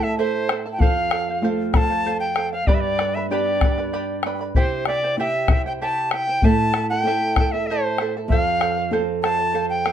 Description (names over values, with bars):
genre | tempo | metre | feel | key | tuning
andean folk, Andean ensemble | 96 BPM | 3/4 | straight | unclear | A4 = 440 Hz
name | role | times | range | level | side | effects
bright reedy quena | melody | 0.0-9.9 s | C5 to B5 | -23 LUFS | equal | plate reverb
charango | accompaniment | 0.0-9.9 s | E4 to B5 | -26 LUFS | right 5 dB | none
flamenco guitar | accompaniment | 0.0-9.9 s | F2 to A4 | -26 LUFS | right 1 dB | none
bombo | percussion | 0.5-9.9 s | none | -20 LUFS | left 2 dB | none
room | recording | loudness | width
moderate small room reverb, RT60 0.5 s | dark, warm production | -18 LUFS | side -9 dB against mid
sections
0.0-9.9 A section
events
none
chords
0.0 Am; 0.8 F; 2.7 G; 4.6 C; 6.4 Am; 8.3 F